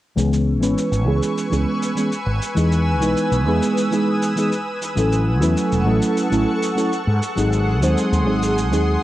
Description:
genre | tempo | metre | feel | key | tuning
sunset chillout | 100 BPM | 4/4 | straight | C# minor | A4 = 440 Hz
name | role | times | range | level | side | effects
mellow FM electric piano | accompaniment | 0.2-9.0 s | E3 to B#4 | -20 LUFS | equal | chorus, phaser, auto-pan, low-pass filter, cassette tape, analog delay
shimmering ambient pad | sustained chords | 0.7-9.0 s | G#4 to E6 | -25 LUFS | equal | chorus, built-in reverb, cassette tape
mellow fretless electric bass | bass | 0.2-9.0 s | E1 to G#2 | -20 LUFS | equal | tube saturation
cabasa | drums | 0.2-8.8 s | none | -33 LUFS | equal | cassette tape
room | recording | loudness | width
wet small room reverb, RT60 0.6 s | home recording on cassette | -17 LUFS | side -14 dB against mid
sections
0.2-9.0 A section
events
filter sweep on FM electric piano 0.2-9.0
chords
0.2 C#m7; 2.6 Emaj7; 5.0 A6; 7.1 G#7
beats
| 0.17 0.77 1.37 1.97 | 2.57 3.17 3.77 4.37 | 4.97 5.57 6.17 6.77 | 7.37 7.97 8.57

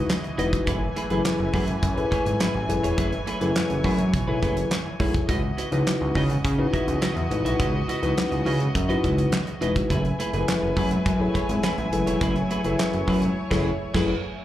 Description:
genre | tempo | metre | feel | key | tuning
early-eighties boogie funk | 104 BPM | 4/4 | straight | unclear | A4 = 441 Hz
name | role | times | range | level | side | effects
mellow tine electric piano | accompaniment | 0.0-14.1 s | D#4 to C#5 | -28 LUFS | left 3 dB | slapback echo
warm chamber string section | sustained chords | 0.0-14.4 s | C#3 to G#5 | -30 LUFS | left 1 dB | none
fat analog bass | bass | 0.0-14.1 s | E1 to C#3 | -25 LUFS | equal | none
damped 70s drum kit | drums | 0.1-14.1 s | crash cymbal, handclaps, hi-hat, kick drum, snare drum | -27 LUFS | equal | none
congas | percussion | 0.1-13.4 s | none | -35 LUFS | left 1 dB | none
clean electric guitar | riff | 0.2-14.1 s | A3 to E5 | -31 LUFS | right 2 dB | wide subtle chorus, slapback echo
room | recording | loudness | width
light reverb | live gig heard through the venue's PA, club reverb | -21 LUFS | side -13 dB against mid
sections
0.0-14.4 A section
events
band accent 13.4-14.4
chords
0.0 C#m11; 0.7 F#m11; 5.3 C#m11; 9.9 F#m11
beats
0.10 | 0.67 1.25 1.83 2.40 | 2.98 3.56 4.14 4.71 | 5.29 5.87 6.44 7.02 | 7.60 8.17 8.75 9.33 | 9.90 10.48 11.06 11.64 | 12.21 12.79 13.37 13.94

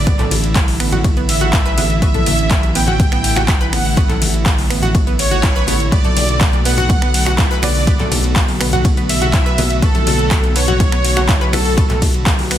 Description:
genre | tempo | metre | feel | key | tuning
progressive house | 123 BPM | 4/4 | straight | B minor | A4 = 441 Hz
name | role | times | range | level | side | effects
soft supersaw | melody | 0.0-12.0 s | A4 to G5 | -22 LUFS | right 1 dB | sidechain pumping, digital delay
airy breathy pad | sustained chords | 0.0-12.6 s | D3 to F#4 | -23 LUFS | right 1 dB | chorus, sidechain pumping
dark detuned saw bass | bass | 0.0-12.6 s | A1 to B1 | -20 LUFS | equal | tube saturation, sidechain pumping
analog pluck | arpeggios | 0.1-12.6 s | A3 to B4 | -23 LUFS | right 2 dB | chorus, sidechain pumping, digital delay
deep house drum kit | drums | 0.1-12.6 s | finger snaps, handclaps, hi-hat, ride cymbal | -20 LUFS | equal | overdrive, sidechain pumping on hats, small room ambience, sidechain pumping on cymbals
electronic kick drum | drums | 0.1-12.4 s | none | -16 LUFS | equal | overdrive, small room ambience
woodblock and congas | percussion | 0.1-12.5 s | none | -26 LUFS | left 4 dB | sidechain pumping on perc
room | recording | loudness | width
light reverb | dense, heavily limited modern master | -12 LUFS | side -11 dB against mid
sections
0.0-12.6 A section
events
none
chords
0.0 Asus4; 5.9 Bm7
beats
| 0.07 0.56 1.04 1.53 | 2.02 2.51 3.00 3.48 | 3.97 4.46 4.95 5.43 | 5.92 6.41 6.90 7.38 | 7.87 8.36 8.85 9.34 | 9.82 10.31 10.80 11.29 | 11.78 12.26

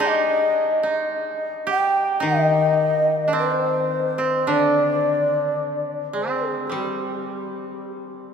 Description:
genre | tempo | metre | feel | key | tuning
japanese traditional, Japanese chamber music | 54 BPM | 4/4 | rubato | G miyako bushi | A4 = 440 Hz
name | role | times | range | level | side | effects
mellow hollow long shakuhachi | melody | 0.0-7.9 s | G4 to G5 | -21 LUFS | left 1 dB | none
koto | second line | 0.0-8.3 s | G3 to C6 | -25 LUFS | right 4 dB | none
koto | accompaniment | 2.2-8.3 s | D3 to G3 | -27 LUFS | left 3 dB | none
room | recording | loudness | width
wet cathedral reverb, RT60 4.9 s | recorded in a church or concert hall | -19 LUFS | side -7 dB against mid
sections
0.0-8.3 A section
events
none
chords
none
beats
| 0.03 1.13 2.24 3.35 | 4.48 5.60 6.72 7.90

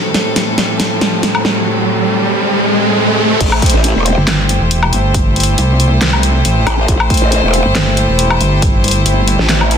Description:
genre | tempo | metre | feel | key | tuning
heavy wobble dubstep | 138 BPM | 4/4 | swing 54% on 16ths, half-time | A minor | A4 = 440 Hz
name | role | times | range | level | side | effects
rich chamber string section | sustained chords | 0.0-9.8 s | A2 to C5 | -16 LUFS | left 1 dB | sidechain pumping
riser | sound effects | 0.0-3.4 s | none | -15 LUFS | right 1 dB | none
big-room dance drum kit | drums | 0.1-9.8 s | crash cymbal, handclaps, hi-hat, snare drum, woodblock | -16 LUFS | left 1 dB | studio reverb
growl bass | bass | 3.4-9.8 s | E1 to A1 | -13 LUFS | equal | distortion, chorus, overdrive
electronic kick drum | drums | 3.4-8.7 s | none | -14 LUFS | equal | studio reverb
pulsing pluck wobble bass | bass | 4.2-9.4 s | E1 to C2 | -13 LUFS | equal | chorus, overdrive
room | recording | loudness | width
light reverb | dense, heavily limited modern master | -10 LUFS | side -8 dB against mid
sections
0.0-3.4 A section; 3.4-9.8 B section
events
build-up 0.0-3.4; drum fill 0.0-1.7; riser 0.0-3.4; drop 3.4-9.8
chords
0.0 Am7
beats
0.36 0.80 1.23 | 1.67 2.10 2.54 2.97 | 3.41 3.84 4.28 4.71 | 5.14 5.58 6.01 6.45 | 6.88 7.32 7.75 8.19 | 8.62 9.06 9.49

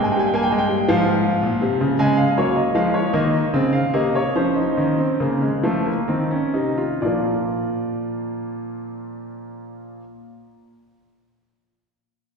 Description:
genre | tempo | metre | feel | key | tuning
classical, baroque-style 3-part fugue for grand piano | 41-55 BPM (dotted quarters) | 6/8 | straight | unclear | A4 = 440 Hz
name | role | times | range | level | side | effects
warm concert grand piano | solo | 0.0-10.0 s | G2 to Ab5 | -18 LUFS | equal | none
room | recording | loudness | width
wet concert hall reverb, RT60 2.2 s | recorded in a church or concert hall | -18 LUFS | side -5 dB against mid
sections
0.0-7.0 A section; 7.0-10.0 B section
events
slowing down 0.9-7.0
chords
0.0 Gm; 0.9 Fm/Ab; 2.0 Db; 3.1 Dbmaj13; 4.3 Bbm; 5.6 F7; 7.0 Bb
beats
0.88 | 1.99 3.14 | 4.34 5.63 | 7.03 8.49

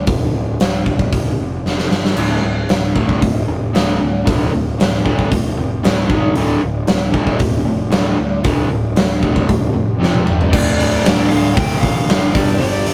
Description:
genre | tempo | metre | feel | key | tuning
hard rock | 115 BPM | 4/4 | straight | D minor | A4 = 440 Hz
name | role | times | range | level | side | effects
fuzz picked electric bass | bass | 0.0-12.9 s | D1 to D2 | -24 LUFS | equal | overdrive
big rock drum kit | drums | 0.1-12.9 s | crash cymbal, hi-hat, kick drum, snare drum, toms | -19 LUFS | equal | none
crunchy overdriven guitar | riff | 2.2-12.9 s | D2 to G#3 | -21 LUFS | equal | none
lead guitar through a small cranked amp | melody | 10.5-12.9 s | D5 to G5 | -24 LUFS | equal | overdrive
room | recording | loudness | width
moderate small room reverb, RT60 0.5 s | rough rehearsal-room recording | -16 LUFS | mono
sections
0.0-10.5 A section; 10.5-12.9 B section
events
drum fill 1.6-2.2, 10.0-10.5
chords
0.0 Dm; 1.6 N.C.; 2.2 D5; 6.1 G#5; 6.4 D5; 10.0 F5; 10.3 G5; 10.5 Dm; 12.3 G5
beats
| 0.08 0.60 1.12 1.65 | 2.17 2.69 3.22 3.74 | 4.27 4.79 5.31 5.83 | 6.36 6.88 7.40 7.92 | 8.45 8.97 9.49 10.01 | 10.53 11.05 11.57 12.09 | 12.61

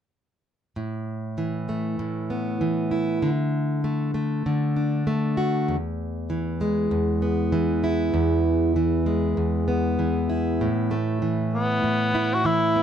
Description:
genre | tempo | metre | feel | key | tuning
acoustic pop | 98 BPM | 4/4 | swing 60% on 16ths | unclear | A4 = 439 Hz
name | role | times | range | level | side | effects
fingerpicked plugged-in steel-string acoustic guitar | accompaniment | 0.8-12.8 s | E2 to F#4 | -22 LUFS | equal | none
mellow cor anglais | melody | 11.5-12.8 s | B3 to F#4 | -22 LUFS | left 2 dB | slapback echo
room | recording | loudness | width
light reverb | close, detailed microphones | -22 LUFS | side -9 dB against mid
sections
0.8-10.6 A section; 10.6-12.8 B section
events
none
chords
0.8 Asus2; 3.2 D; 5.7 E; 10.6 Asus2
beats
| 0.76 1.38 1.99 2.61 | 3.22 3.84 4.45 5.07 | 5.68 6.30 6.91 7.53 | 8.14 8.76 9.37 9.98 | 10.60 11.21 11.83 12.44

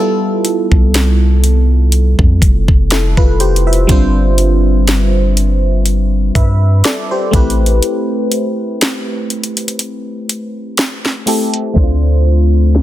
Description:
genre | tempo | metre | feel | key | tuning
contemporary R&B | 61 BPM | 4/4 | swing 54% on 16ths | unclear | A4 = 437 Hz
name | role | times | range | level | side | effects
FM electric piano | accompaniment | 0.0-12.8 s | G3 to E5 | -16 LUFS | equal | chorus, phaser
trap drum kit | drums | 0.4-12.8 s | hi-hat, kick drum, snare drum | -14 LUFS | equal | none
long sustained 808-style bass | bass | 0.7-12.8 s | F1 to G2 | -12 LUFS | equal | none
room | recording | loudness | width
little or no reverb | dense, heavily limited modern master, low-pass filter | -10 LUFS | side -14 dB against mid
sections
0.0-11.8 A section; 11.8-12.8 B section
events
break 7.8-11.8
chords
0.0 Fmaj9#11; 3.9 G7sus4; 7.3 Am9; 11.8 Dm7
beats
0.94 1.93 2.91 | 3.89 4.88 5.86 6.84 | 7.83 8.81 9.79 10.78 | 11.76 12.74

